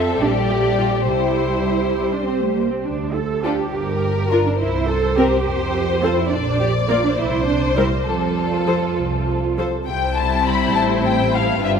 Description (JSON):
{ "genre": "quick classical-period movement for string orchestra", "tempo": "68 BPM (dotted quarters)", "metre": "6/8", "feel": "rubato", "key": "F major", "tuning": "A4 = 439 Hz", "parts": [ { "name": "muted symphonic violin section", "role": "melody", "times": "0.0-11.7 s", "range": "A4 to B5", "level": "-25 LUFS", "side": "left 7 dB", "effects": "none" }, { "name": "muted symphonic violin section", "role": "second line", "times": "0.0-11.8 s", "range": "E4 to D5", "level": "-23 LUFS", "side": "left 3 dB", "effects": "none" }, { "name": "muted symphonic viola section", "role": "accompaniment", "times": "0.0-11.8 s", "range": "F3 to Bb4", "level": "-23 LUFS", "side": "equal", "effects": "none" }, { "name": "muted symphonic double bass section", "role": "bass", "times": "0.0-11.8 s", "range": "G1 to F2", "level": "-23 LUFS", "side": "right 3 dB", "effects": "none" }, { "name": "muted symphonic cello section", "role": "bass", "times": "0.2-11.8 s", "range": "G2 to A4", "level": "-24 LUFS", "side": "right 6 dB", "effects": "none" } ], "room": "wet cathedral reverb, RT60 7.0 s", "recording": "in a vast, echoing space", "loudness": "-17 LUFS", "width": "side -6 dB against mid", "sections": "0.0-9.9 A section; 9.9-11.8 B section", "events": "none", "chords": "0.2 Gm/Bb; 1.1 C; 2.9 Dm; 3.7 Gm7; 4.6 C; 5.5 F; 6.3 Bb; 7.2 C7; 8.1 F; 9.9 C" }